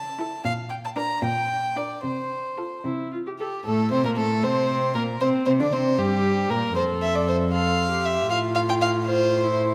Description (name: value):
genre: quick classical-period movement for string quartet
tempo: 78 BPM (dotted quarters)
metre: 6/8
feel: rubato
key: F major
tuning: A4 = 440 Hz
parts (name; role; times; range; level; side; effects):
- warm violin; melody; 0.0-9.7 s; G4 to C6; -33 LUFS; equal; none
- rich cello; bass; 0.0-9.7 s; F2 to D3; -29 LUFS; equal; none
- warm violin; second line; 0.2-9.6 s; G4 to G5; -26 LUFS; equal; none
- warm viola; accompaniment; 0.2-9.7 s; G3 to A4; -30 LUFS; equal; none
room: wet scoring stage reverb, RT60 1.7 s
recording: none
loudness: -24 LUFS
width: mono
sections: 0.0-3.7 A section; 3.7-9.7 B section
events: none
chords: 0.5 Gm/Bb; 2.0 F/C; 2.8 C; 3.7 Am; 5.2 C5; 6.8 F; 8.3 F/A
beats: | 0.45 1.23 | 2.04 2.85 | 3.66 4.44 | 5.21 5.99 | 6.76 7.53 | 8.29 9.05